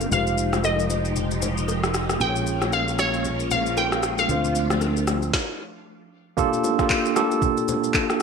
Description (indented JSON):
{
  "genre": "amapiano",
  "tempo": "115 BPM",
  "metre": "4/4",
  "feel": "swing 58% on 16ths",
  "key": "G minor",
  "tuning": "A4 = 437 Hz",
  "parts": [
    { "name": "glassy wavetable pluck", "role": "melody", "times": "0.0-5.8 s", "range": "Db5 to G5", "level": "-25 LUFS", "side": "left 1 dB", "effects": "chorus, low-pass filter, ping-pong delay" },
    { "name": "tine electric piano", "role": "accompaniment", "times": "0.0-8.2 s", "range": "Ab3 to Db5", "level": "-25 LUFS", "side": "right 2 dB", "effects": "medium stereo tremolo, low-pass filter" },
    { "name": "phased string machine", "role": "sustained chords", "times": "0.0-5.3 s", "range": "F3 to G4", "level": "-30 LUFS", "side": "equal", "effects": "ensemble chorus, phaser, sidechain pumping, low-pass filter" },
    { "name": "fingered electric bass", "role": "bass", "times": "0.0-5.3 s", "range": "F1 to D2", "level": "-27 LUFS", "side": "equal", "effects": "none" },
    { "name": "smooth R&B drum kit", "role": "drums", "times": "0.0-8.2 s", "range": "handclaps, kick drum, rim click, shaker, snare drum", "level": "-26 LUFS", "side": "equal", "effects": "vintage 12-bit sampler grit, gated reverb" },
    { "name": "bongos and congas", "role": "percussion", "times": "0.0-8.1 s", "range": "none", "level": "-33 LUFS", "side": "left 5 dB", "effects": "none" }
  ],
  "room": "moderate plate reverb, RT60 1.6 s",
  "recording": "bright 1980s-style digital production",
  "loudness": "-20 LUFS",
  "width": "side -6 dB against mid",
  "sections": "0.0-6.4 A section; 6.4-8.2 B section",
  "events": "filter sweep 0.0-6.4; stop 5.3-6.4",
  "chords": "0.1 Fm9; 2.2 Bbm9; 4.3 Dm7; 6.4 Gm9",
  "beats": "| 0.12 0.64 1.16 1.68 | 2.21 2.73 3.25 3.77 | 4.29 4.81 5.33 5.86 | 6.38 6.90 7.42 7.94"
}